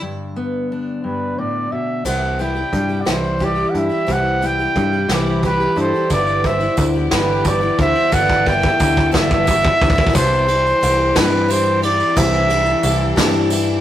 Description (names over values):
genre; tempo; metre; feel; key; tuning
indie folk with a building arrangement; 59 BPM (dotted quarters); 6/8; straight; unclear; A4 = 441 Hz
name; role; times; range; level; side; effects
fingerpicked steel-string acoustic guitar; accompaniment; 0.0-8.1 s; G2 to G4; -23 LUFS; left 1 dB; none
mellow trumpet; melody; 1.0-13.2 s; G4 to G5; -18 LUFS; right 1 dB; none
picked twelve-string acoustic guitar; accompaniment; 2.0-13.8 s; G2 to G4; -22 LUFS; left 3 dB; none
picked electric bass; bass; 2.1-13.8 s; G1 to G2; -22 LUFS; equal; none
vintage brush drum kit; drums; 2.1-13.7 s; crash cymbal, hi-hat, kick drum, ride cymbal, snare drum; -20 LUFS; equal; none
warm fiddle; second line; 5.1-9.1 s; E4 to E5; -25 LUFS; right 4 dB; none
warm chamber string section; sustained chords; 6.1-13.8 s; B2 to A4; -29 LUFS; right 1 dB; none
tambourine; percussion; 6.1-13.7 s; none; -33 LUFS; right 4 dB; none
room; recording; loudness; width
moderate stone room reverb, RT60 1.1 s; rough rehearsal-room recording, warm saturation; -14 LUFS; side -12 dB against mid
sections
0.0-2.0 A section; 2.0-10.1 B section; 10.1-13.8 C section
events
build-up 2.0-10.1; drum fill 2.0-10.1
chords
0.0 G; 2.0 C; 6.1 G6; 10.1 C